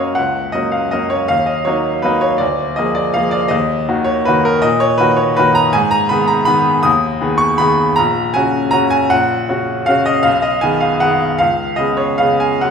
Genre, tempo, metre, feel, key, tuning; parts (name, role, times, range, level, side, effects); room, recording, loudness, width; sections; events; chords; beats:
classical, piano waltz; 139-172 BPM; 3/4; rubato; F# major; A4 = 440 Hz
bright baby grand piano; solo; 0.0-12.7 s; A#1 to D#6; -12 LUFS; equal
wet recital hall reverb, RT60 1.8 s; recorded in a church or concert hall; -12 LUFS; side -6 dB against mid
0.0-12.7 A section
0.0 F#; 1.3 D#m; 2.4 A#7/D; 3.5 D#m; 5.8 G#m; 8.0 F#/A#; 10.3 G#m/B; 11.4 C#7
| 0.17 0.54 0.92 | 1.30 1.66 2.04 | 2.40 2.78 3.15 | 3.52 3.89 4.28 | 4.65 5.00 5.38 | 5.75 6.12 6.49 | 6.86 7.22 7.60 | 7.99 8.36 8.74 | 9.12 9.49 9.88 | 10.26 10.64 11.03 | 11.40 11.79 12.21 | 12.63